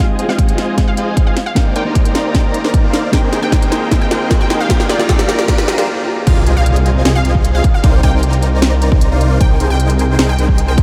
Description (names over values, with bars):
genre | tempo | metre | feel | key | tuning
future bass | 153 BPM | 4/4 | half-time | C minor | A4 = 439 Hz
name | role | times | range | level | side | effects
unison pluck | melody | 0.0-10.8 s | D5 to G5 | -27 LUFS | equal | analog chorus, sidechain pumping, diffuse ambient delay
clean electric guitar | accompaniment | 0.0-5.9 s | Ab3 to D5 | -26 LUFS | equal | sidechain pumping, diffuse ambient delay
dense compressed supersaw | riff | 0.0-10.8 s | Eb4 to Bb5 | -22 LUFS | equal | sidechain pumping, low-pass filter, diffuse ambient delay
riser, swell and impact | sound effects | 0.1-7.8 s | none | -29 LUFS | equal | none
trap drum kit | drums | 0.2-10.8 s | crash cymbal, hi-hat, snare drum | -22 LUFS | equal | none
electronic kick drum | drums | 0.4-10.8 s | none | -15 LUFS | equal | none
detuned saw bass | bass | 6.3-10.8 s | C2 | -16 LUFS | equal | chorus, tube saturation, sidechain pumping
room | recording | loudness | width
moderate huge ambient reverb, RT60 8.1 s | dreamy mix soaked in reverb | -14 LUFS | mono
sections
0.0-6.3 A section; 6.3-10.8 B section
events
build-up 0.0-6.3; drum fill 0.0-5.9; swell 5.5-6.3; break 5.9-6.3; drop 6.3-10.8; impact 6.3-7.8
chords
0.0 Fm7; 1.4 Cm9; 3.1 Abmaj9; 4.7 Gm7; 6.3 Fm7/C; 7.6 Cm9; 9.4 Abmaj9/C